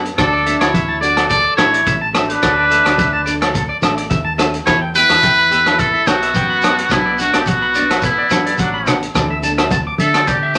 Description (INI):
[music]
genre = highlife guitar band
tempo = 107 BPM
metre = 4/4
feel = straight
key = D major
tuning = A4 = 440 Hz
[part]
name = nylon-string guitar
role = accompaniment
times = 0.0-10.6 s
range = E3 to A4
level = -28 LUFS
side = equal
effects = none
[part]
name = fingered electric bass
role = bass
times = 0.0-10.6 s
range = A1 to D3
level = -30 LUFS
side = equal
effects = none
[part]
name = crunchy breakbeat drum kit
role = drums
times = 0.1-10.6 s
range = hi-hat, kick drum, rim click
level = -22 LUFS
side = equal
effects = none
[part]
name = trumpet with metal mute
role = melody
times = 0.2-10.6 s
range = D4 to D5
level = -17 LUFS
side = equal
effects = none
[part]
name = mellow cor anglais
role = second line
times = 0.2-9.0 s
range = F#3 to A4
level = -27 LUFS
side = equal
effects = none
[part]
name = electric guitar at the edge of break-up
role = arpeggios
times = 0.2-10.6 s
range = A4 to D6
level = -25 LUFS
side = equal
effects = none
[part]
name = agogo bells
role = percussion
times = 0.2-10.6 s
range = none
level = -27 LUFS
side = equal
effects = none
[part]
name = congas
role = percussion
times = 0.2-10.3 s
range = none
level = -26 LUFS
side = equal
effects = none
[part]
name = shekere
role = percussion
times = 0.2-10.6 s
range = none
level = -29 LUFS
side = equal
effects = none
[sound]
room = wet studio ambience, RT60 0.5 s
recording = none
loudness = -15 LUFS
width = mono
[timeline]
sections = 0.0-9.2 A section; 9.2-10.6 B section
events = muted trumpet solo 9.2-10.6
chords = 0.2 Dsus2; 4.7 Em; 6.9 Bm; 9.2 Dsus2